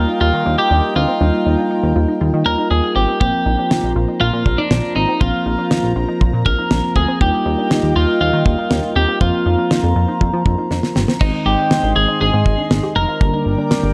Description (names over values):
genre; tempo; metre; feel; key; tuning
synth-pop; 120 BPM; 4/4; straight; Bb mixolydian; A4 = 441 Hz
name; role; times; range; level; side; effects
twelve-string electric guitar; melody; 0.0-13.9 s; D4 to Bb4; -22 LUFS; equal; delay
mellow tine electric piano; accompaniment; 0.0-13.9 s; D3 to F4; -25 LUFS; equal; none
chorused pulse-width pad; sustained chords; 0.0-13.9 s; Ab3 to D6; -26 LUFS; equal; phaser
unison pluck; arpeggios; 0.0-13.9 s; C4 to G4; -30 LUFS; equal; none
chorused synth bass; bass; 0.0-13.9 s; F1 to F3; -20 LUFS; equal; none
damped 70s drum kit; drums; 3.2-13.8 s; crash cymbal, kick drum, snare drum; -20 LUFS; equal; none
room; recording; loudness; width
light reverb, small room ambience; none; -16 LUFS; mono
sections
0.0-11.2 A section; 11.2-13.9 B section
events
drum fill 10.7-11.2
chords
0.0 Ebadd9; 3.2 Bbsus2; 7.2 Ebadd9; 9.2 Fsus4; 11.2 Ab; 13.2 Gm